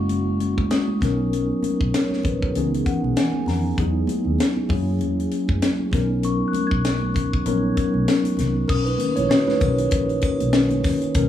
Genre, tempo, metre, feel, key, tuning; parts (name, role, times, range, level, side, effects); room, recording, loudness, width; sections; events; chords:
lush 1970s-style soul; 98 BPM; 4/4; swing 58% on 16ths; A4 = 440 Hz
mellow tine electric piano; accompaniment; 0.0-11.3 s; D#3 to A#5; -22 LUFS; left 1 dB; medium stereo tremolo
vintage muted fingered electric bass; bass; 0.0-11.3 s; F#1 to F#2; -25 LUFS; equal
glockenspiel with rubber mallets; texture; 0.0-1.3, 6.2-10.9 s; C#6 to G#6; -35 LUFS; left 3 dB
tight funk drum kit; drums; 0.1-11.3 s; crash cymbal, hi-hat, kick drum, snare drum; -24 LUFS; equal
congas; percussion; 0.1-11.3 s; -32 LUFS; right 3 dB
triangle; percussion; 8.7-11.3 s; -45 LUFS; right 9 dB
moderate plate reverb, RT60 1.7 s, small room ambience; -19 LUFS; side -11 dB against mid
0.0-8.7 A section; 8.7-11.3 B section
tine electric piano fill 2.6-3.8; tine electric piano solo 8.7-11.3
0.0 F#7; 1.0 Bmaj9; 2.6 C#m7; 3.8 Emaj7; 4.7 F#7; 5.9 Bmaj9